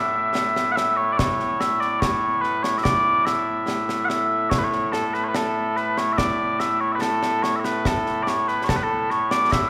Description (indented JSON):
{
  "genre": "scottish traditional, Scottish pipe music",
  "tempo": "72 BPM",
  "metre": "2/4",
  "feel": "straight",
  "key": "A major",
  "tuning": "A4 = 440 Hz",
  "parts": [
    { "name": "mellow small bagpipes", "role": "melody", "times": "0.0-9.7 s", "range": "A2 to F#5", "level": "-23 LUFS", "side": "equal", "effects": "none" },
    { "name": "concert snare drum and concert bass drum", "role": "drums", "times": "0.4-9.7 s", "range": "none", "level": "-30 LUFS", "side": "equal", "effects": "none" }
  ],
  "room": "moderate concert hall reverb, RT60 2.1 s",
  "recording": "recorded in a church or concert hall",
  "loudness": "-22 LUFS",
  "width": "mono",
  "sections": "0.0-9.5 A section",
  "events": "none",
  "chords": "none"
}